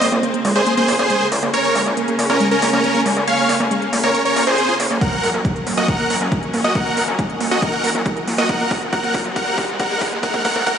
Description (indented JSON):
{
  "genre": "uplifting trance",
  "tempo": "138 BPM",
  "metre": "4/4",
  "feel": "straight",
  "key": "Bb minor",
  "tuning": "A4 = 440 Hz",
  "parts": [
    { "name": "big supersaw lead", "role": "melody", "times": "0.0-10.8 s", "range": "Db4 to Gb5", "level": "-19 LUFS", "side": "right 1 dB", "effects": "sidechain pumping, tape echo" },
    { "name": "wide unison pluck", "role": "second line", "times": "0.0-10.8 s", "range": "Bb4 to Gb5", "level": "-28 LUFS", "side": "equal", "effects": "none" },
    { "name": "muted studio string section", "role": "sustained chords", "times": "0.0-10.8 s", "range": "Db3 to Db4", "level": "-25 LUFS", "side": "left 2 dB", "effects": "sidechain pumping" },
    { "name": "wide unison pluck", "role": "arpeggios", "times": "0.0-10.7 s", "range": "Ab3 to Bb4", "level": "-24 LUFS", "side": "right 2 dB", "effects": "sidechain pumping, dub echo" },
    { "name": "gritty driven synth bass", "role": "bass", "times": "0.0-10.6 s", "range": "Gb1 to Bb1", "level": "-23 LUFS", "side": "equal", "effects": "sidechain pumping, high-pass filter" },
    { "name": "electronic hi-hat", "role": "drums", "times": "0.0-10.8 s", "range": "none", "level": "-28 LUFS", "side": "right 2 dB", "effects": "none" },
    { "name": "electronic kick drum", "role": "drums", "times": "5.0-10.8 s", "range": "none", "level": "-23 LUFS", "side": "equal", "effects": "none" },
    { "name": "riser", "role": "sound effects", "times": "6.2-10.8 s", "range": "none", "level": "-29 LUFS", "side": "equal", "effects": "none" }
  ],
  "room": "moderate huge ambient reverb, RT60 4.8 s",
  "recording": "played on a big sound system in a bare room, stone room reverb, high-pass filter, nothing above 10.6 kHz",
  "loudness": "-15 LUFS",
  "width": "side -8 dB against mid",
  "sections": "0.0-10.8 A section",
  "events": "build-up 0.0-10.8; filter sweep on synth arpeggio sound 0.0-10.8; drum fill 5.0-10.8; riser 6.2-10.8",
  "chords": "0.0 Bbmadd9; 5.0 Gb",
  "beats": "0.23 0.67 1.10 | 1.54 1.97 2.40 2.84 | 3.27 3.71 4.14 4.58 | 5.01 5.45 5.88 6.32 | 6.75 7.19 7.62 8.06 | 8.49 8.93 9.36 9.80 | 10.23 10.67"
}